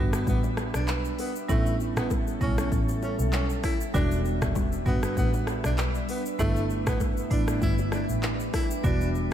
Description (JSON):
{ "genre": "afrobeats", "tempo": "98 BPM", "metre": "4/4", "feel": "swing 55% on 16ths", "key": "unclear", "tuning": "A4 = 443 Hz", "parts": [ { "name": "breathy tenor saxophone", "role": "melody", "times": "0.0-9.1 s", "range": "A3 to E4", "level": "-34 LUFS", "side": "equal", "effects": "analog delay" }, { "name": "marimba with medium mallets", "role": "accompaniment", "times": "0.0-9.3 s", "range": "G3 to F#4", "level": "-32 LUFS", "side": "right 3 dB", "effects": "none" }, { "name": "glassy FM pad", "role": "sustained chords", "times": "0.0-9.3 s", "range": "G3 to E5", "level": "-34 LUFS", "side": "equal", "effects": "ensemble chorus, built-in reverb" }, { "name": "warm double bass", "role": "bass", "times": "0.0-9.3 s", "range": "E1 to B1", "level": "-28 LUFS", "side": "equal", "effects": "none" }, { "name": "impact", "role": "sound effects", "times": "0.0-1.5 s", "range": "none", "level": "barely audible", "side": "none", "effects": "none" }, { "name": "afro-pop drum kit", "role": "drums", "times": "0.1-9.3 s", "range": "handclaps, hi-hat, kick drum, rim click, shaker, toms", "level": "-28 LUFS", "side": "equal", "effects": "none" }, { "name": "congas and bongos", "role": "percussion", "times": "0.3-9.3 s", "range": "none", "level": "-40 LUFS", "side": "left 7 dB", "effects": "none" } ], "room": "light reverb, small room ambience", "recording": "none", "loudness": "-24 LUFS", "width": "side -10 dB against mid", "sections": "0.0-9.3 A section", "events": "impact 0.0-1.5", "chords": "0.0 Em7; 1.5 A7; 3.9 Em7; 6.4 G6" }